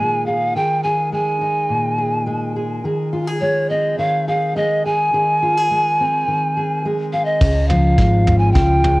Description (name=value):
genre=indie folk with a building arrangement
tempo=105 BPM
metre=4/4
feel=straight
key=Ab major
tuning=A4 = 440 Hz
part: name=polished pan flute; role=melody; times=0.0-9.0 s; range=Db5 to Ab5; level=-18 LUFS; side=equal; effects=cassette tape
part: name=fingerpicked steel-string acoustic guitar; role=accompaniment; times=0.0-9.0 s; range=Bb2 to Ab4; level=-21 LUFS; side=equal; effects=none
part: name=picked electric bass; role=bass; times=7.4-9.0 s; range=Ab1 to Db2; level=-15 LUFS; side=equal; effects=none
part: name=soft brush drum kit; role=drums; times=7.4-9.0 s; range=crash cymbal, kick drum, snare drum, toms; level=-18 LUFS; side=equal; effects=cassette tape
room=light reverb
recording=home recording on cassette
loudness=-15 LUFS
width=side -21 dB against mid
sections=0.0-7.4 A section; 7.4-9.0 B section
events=build-up 7.4-9.0; drum fill 7.4-9.0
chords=0.0 Ebsus4; 2.8 Ab/Eb; 7.4 Db